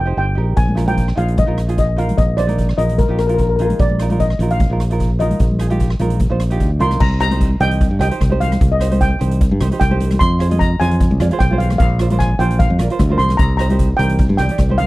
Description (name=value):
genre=calypso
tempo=150 BPM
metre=4/4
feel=straight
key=unclear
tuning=A4 = 440 Hz
part: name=steel pan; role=melody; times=0.0-14.9 s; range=Bb4 to C6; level=-21 LUFS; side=left 1 dB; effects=none
part: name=fingered electric bass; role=bass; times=0.0-14.9 s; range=F1 to G2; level=-16 LUFS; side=equal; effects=none
part: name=tenor ukulele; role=accompaniment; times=0.1-14.9 s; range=Eb4 to Eb5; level=-25 LUFS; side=right 4 dB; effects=none
part: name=street-band drum kit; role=drums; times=0.6-14.9 s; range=crash cymbal, hi-hat, kick drum, rim click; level=-19 LUFS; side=equal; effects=none
part: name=congas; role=percussion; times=0.7-14.9 s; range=none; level=-25 LUFS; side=left 1 dB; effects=none
room=small room ambience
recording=dry, close 1970s-style studio recording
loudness=-13 LUFS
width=side -19 dB against mid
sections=0.0-7.0 A section; 7.0-14.9 B section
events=none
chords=0.0 Eb; 0.6 Bbsus4; 7.0 Cm; 10.2 Fm; 11.8 Bbsus2; 13.4 Cm7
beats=0.17 | 0.57 0.98 1.38 1.78 | 2.19 2.59 2.99 3.39 | 3.80 4.20 4.60 5.00 | 5.40 5.81 6.21 6.61 | 7.01 7.41 7.81 8.21 | 8.61 9.01 9.41 9.81 | 10.21 10.61 11.00 11.40 | 11.80 12.20 12.60 13.00 | 13.39 13.79 14.19 14.59